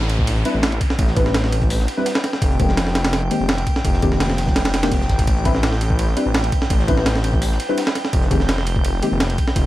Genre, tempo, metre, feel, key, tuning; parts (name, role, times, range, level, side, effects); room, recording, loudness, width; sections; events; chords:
drum and bass, jungle; 168 BPM; 4/4; straight; A4 = 440 Hz
detuned saw bass; bass; 0.0-9.7 s; F1 to A1; -20 LUFS; equal
breakbeat sampler-style drum kit; drums; 0.0-9.6 s; hi-hat, kick drum, ride cymbal, snare drum; -20 LUFS; equal; small room ambience
crunchy breakbeat drum kit; drums; 0.0-9.6 s; hi-hat, shaker, snare drum; -35 LUFS; right 1 dB
downlifter; sound effects; 0.0-2.4 s; -33 LUFS; equal
drifting glass-harmonics texture; texture; 0.3-9.7 s; G5; -30 LUFS; right 1 dB; chorus, built-in reverb
deep mellow chord stab; stabs; 0.5-9.1 s; Eb3 to B4; -24 LUFS; left 2 dB; ensemble chorus, dub echo
little or no reverb; vinyl crackle; -16 LUFS; side -15 dB against mid
0.0-9.7 A section
0.0 Am11; 2.4 Fm11; 5.3 Am11; 8.1 Fm11